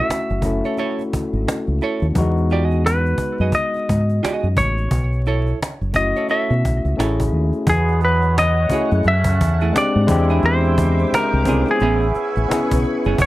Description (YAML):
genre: R&B, neo-soul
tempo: 87 BPM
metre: 4/4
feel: swing 61% on 16ths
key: E major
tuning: A4 = 441 Hz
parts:
  - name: semi-hollow electric guitar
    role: melody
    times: 0.0-13.3 s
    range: G#4 to E5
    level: -21 LUFS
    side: equal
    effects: none
  - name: hollow-body jazz guitar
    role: second line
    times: 0.0-13.2 s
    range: A3 to D#5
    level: -24 LUFS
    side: right 5 dB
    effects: none
  - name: overdriven tine electric piano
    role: accompaniment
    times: 0.0-13.2 s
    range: F#3 to A4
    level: -22 LUFS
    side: left 3 dB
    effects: none
  - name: deep dub fingered electric bass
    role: bass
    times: 0.1-13.3 s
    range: E1 to B2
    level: -18 LUFS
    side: equal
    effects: none
  - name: cajon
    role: drums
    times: 0.1-13.3 s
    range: none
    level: -24 LUFS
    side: equal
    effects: none
  - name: soft string machine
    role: sustained chords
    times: 7.7-13.3 s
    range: B4 to D6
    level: -30 LUFS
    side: equal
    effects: ensemble chorus, plate reverb
  - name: muted trombone section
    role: stabs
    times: 7.7-13.3 s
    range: C#3 to F#4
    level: -27 LUFS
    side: right 6 dB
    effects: plate reverb
room: light reverb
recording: vinyl crackle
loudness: -16 LUFS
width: side -16 dB against mid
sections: 0.0-7.7 A section; 7.7-13.3 B section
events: none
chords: 0.0 B9sus4 (rootless); 2.1 Emaj9; 4.9 B9sus4; 7.7 E69; 9.0 F#m9; 10.1 E7alt; 11.8 Amaj9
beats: 0.08 0.77 1.46 | 2.15 2.84 3.53 4.22 | 4.91 5.60 6.29 6.98 | 7.67 8.36 9.04 9.73 | 10.43 11.11 11.80 12.49 | 13.18